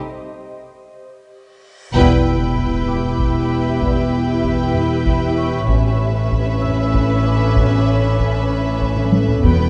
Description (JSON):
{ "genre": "cinematic, suspense film score", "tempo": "96 BPM", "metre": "3/4", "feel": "straight", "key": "E dorian", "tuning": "A4 = 440 Hz", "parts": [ { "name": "ethereal airy pad", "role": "sustained chords", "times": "0.0-9.7 s", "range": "C#4 to B5", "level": "-30 LUFS", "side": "equal", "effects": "ensemble chorus, built-in reverb, tremolo" }, { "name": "vibraphone with soft mallets", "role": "texture", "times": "0.0-9.7 s", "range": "B4 to E6", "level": "-34 LUFS", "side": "equal", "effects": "none" }, { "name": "reverse cymbal and sub drop", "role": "sound effects", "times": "1.9-3.8 s", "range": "none", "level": "-27 LUFS", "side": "equal", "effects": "none" }, { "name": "warm studio violin section", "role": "melody", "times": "1.9-9.7 s", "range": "E5 to G5", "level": "-32 LUFS", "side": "equal", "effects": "none" }, { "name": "warm studio viola section", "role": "accompaniment", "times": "1.9-9.7 s", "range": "B3 to E4", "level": "-26 LUFS", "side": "equal", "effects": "none" }, { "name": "dark trombone section", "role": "sustained chords", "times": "1.9-9.7 s", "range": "B2 to C#4", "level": "-27 LUFS", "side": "equal", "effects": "none" }, { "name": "dark studio cello section", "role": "bass", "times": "1.9-9.7 s", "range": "E2 to A2", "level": "-23 LUFS", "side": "equal", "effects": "none" }, { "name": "warm studio double bass section", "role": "bass", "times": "1.9-9.7 s", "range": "E1 to A1", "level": "-23 LUFS", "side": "equal", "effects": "none" }, { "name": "taiko ensemble", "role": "drums", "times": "1.9-9.7 s", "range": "none", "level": "-24 LUFS", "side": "equal", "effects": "none" }, { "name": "clear studio violin section", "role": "second line", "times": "2.0-9.7 s", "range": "B4", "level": "-29 LUFS", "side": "equal", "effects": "none" }, { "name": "timpani", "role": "percussion", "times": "9.4-9.7 s", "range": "E2", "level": "-18 LUFS", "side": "equal", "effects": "none" } ], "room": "moderate scoring stage reverb, RT60 2.0 s", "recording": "dark, warm production, nothing above 10.5 kHz", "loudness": "-17 LUFS", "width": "mono", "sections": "0.0-1.9 A section; 1.9-9.7 B section", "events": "break 0.1-1.9; drum fill 1.5-1.9, 9.0-9.4; reverse cymbal 1.8; band accent 1.9-2.6; impact 1.9-3.8", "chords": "0.1 N.C.; 1.9 Em; 5.7 Aadd9" }